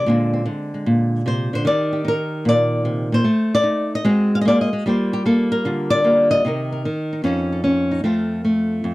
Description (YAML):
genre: solo jazz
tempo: 150 BPM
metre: 4/4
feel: swing 67% on 8ths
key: Bb major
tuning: A4 = 440 Hz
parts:
  - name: flamenco guitar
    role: solo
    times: 0.0-8.9 s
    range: F2 to F5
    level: -17 LUFS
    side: equal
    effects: none
room: light reverb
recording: dry, close 1970s-style studio recording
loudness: -17 LUFS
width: side -19 dB against mid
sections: 0.0-8.1 A section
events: none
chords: 0.1 Bb9; 1.7 Ebmaj7; 3.3 Adim; 4.1 Ab7; 4.9 Gm7; 6.5 Cm7; 7.3 Faug7; 8.1 F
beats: | 0.05 0.45 0.85 1.25 | 1.65 2.05 2.45 2.85 | 3.25 3.65 4.05 4.45 | 4.85 5.25 5.65 6.05 | 6.45 6.85 7.25 7.65 | 8.05 8.45 8.85